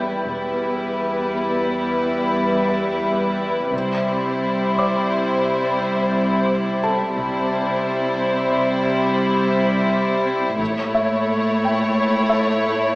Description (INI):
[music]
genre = cinematic, suspense film score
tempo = 87 BPM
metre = 5/4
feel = straight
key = unclear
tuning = A4 = 440 Hz
[part]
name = dark studio violin section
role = melody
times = 0.0-13.0 s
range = B4 to C#5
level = -24 LUFS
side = equal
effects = none
[part]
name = rich studio violin section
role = second line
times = 0.0-13.0 s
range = E4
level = -23 LUFS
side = left 1 dB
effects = none
[part]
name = warm studio viola section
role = accompaniment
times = 0.0-13.0 s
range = G3 to A3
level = -23 LUFS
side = equal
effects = none
[part]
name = rich chamber cello section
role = bass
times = 0.0-13.0 s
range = E2 to C3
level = -26 LUFS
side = equal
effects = none
[part]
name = felt-muted upright piano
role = texture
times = 0.0-13.0 s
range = A4 to G6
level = -27 LUFS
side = equal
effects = none
[part]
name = warm studio double bass section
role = bass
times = 0.2-11.2 s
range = E1 to C2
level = -37 LUFS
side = equal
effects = none
[part]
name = taiko ensemble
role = drums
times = 3.7-5.1, 10.6-11.9 s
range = none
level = -42 LUFS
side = equal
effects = none
[sound]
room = moderate concert hall reverb, RT60 2.2 s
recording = small speaker sound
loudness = -18 LUFS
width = side -23 dB against mid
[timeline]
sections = 0.0-13.0 A section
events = none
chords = 0.0 Em; 3.7 C; 10.6 A